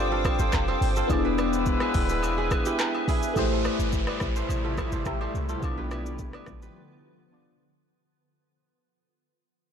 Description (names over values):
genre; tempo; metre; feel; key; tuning
afrobeats; 106 BPM; 4/4; straight; A minor; A4 = 441 Hz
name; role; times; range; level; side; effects
dark horn section; second line; 0.0-3.0 s; G3 to D5; -31 LUFS; left 3 dB; plate reverb
barking FM electric piano; accompaniment; 0.0-7.9 s; A3 to E5; -30 LUFS; left 3 dB; phaser, plate reverb
granular cloud pad; sustained chords; 0.0-7.9 s; C3 to D6; -33 LUFS; left 1 dB; built-in reverb, plate reverb
kora; riff; 0.0-8.0 s; E4 to D5; -34 LUFS; right 7 dB; ping-pong delay
clean 808-style bass; bass; 0.0-6.7 s; D1 to C2; -30 LUFS; equal; none
afro-pop drum kit; drums; 0.2-6.7 s; handclaps, hi-hat, kick drum, rim click, shaker; -29 LUFS; equal; soft clipping on snare
agogo bells and woodblock; percussion; 0.2-6.5 s; none; -40 LUFS; right 2 dB; none
downlifter; sound effects; 3.4-7.9 s; none; -38 LUFS; equal; none
room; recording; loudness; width
light reverb; blown-out, overdriven recording, overdrive; -24 LUFS; side -8 dB against mid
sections
0.0-3.4 A section; 3.4-7.9 B section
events
fade-out 3.4-7.9; break 6.8-7.9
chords
0.0 G7sus4; 1.1 E7; 3.4 Am7; 5.6 Bdim